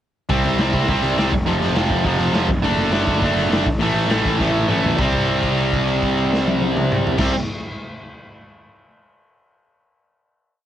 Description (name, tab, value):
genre	punk rock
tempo	204 BPM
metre	4/4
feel	straight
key	C major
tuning	A4 = 443 Hz
part	distorted electric guitar	riff	0.3-7.3 s	F2 to D4	-22 LUFS	left 8 dB	overdrive, cassette tape
part	tight distorted guitar	riff	0.3-7.3 s	F2 to D4	-21 LUFS	right 8 dB	distortion, cassette tape
part	fuzz picked electric bass	bass	0.3-7.3 s	F1 to C2	-23 LUFS	equal	overdrive
part	raw garage drum kit	drums	0.3-7.3 s	crash cymbal, hi-hat, kick drum, snare drum, toms	-23 LUFS	equal	none
room	small room ambience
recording	home recording on cassette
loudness	-16 LUFS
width	side -11 dB against mid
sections	0.3-5.0 verse; 5.0-7.4 final chord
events	drum fill 4.4-5.0; held note 5.0-7.2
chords	0.3 C5; 1.3 F5; 2.5 D/F#; 3.7 A5; 5.0 C5